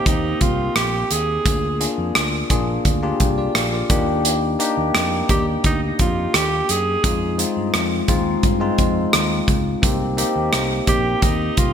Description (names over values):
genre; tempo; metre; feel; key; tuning
1980s-style pop; 86 BPM; 4/4; straight; C minor; A4 = 440 Hz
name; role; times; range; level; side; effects
breathy alto saxophone; melody; 0.0-11.7 s; Eb4 to Ab4; -23 LUFS; right 3 dB; none
bell-like tine electric piano; accompaniment; 0.0-11.7 s; Ab3 to F5; -22 LUFS; left 2 dB; wide subtle chorus
fingered electric bass; bass; 0.1-11.7 s; Bb1 to G2; -25 LUFS; equal; none
modern studio drum kit; drums; 0.1-11.7 s; hi-hat, kick drum, rim click; -20 LUFS; right 1 dB; gated reverb
room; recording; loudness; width
moderate lush hall reverb, RT60 2.0 s, small room ambience; bright 1980s-style digital production; -17 LUFS; side -8 dB against mid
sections
0.0-11.7 A section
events
none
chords
0.0 Cm7; 1.5 Bb7; 3.9 Ebmaj7; 7.0 Fm7; 9.8 Cm7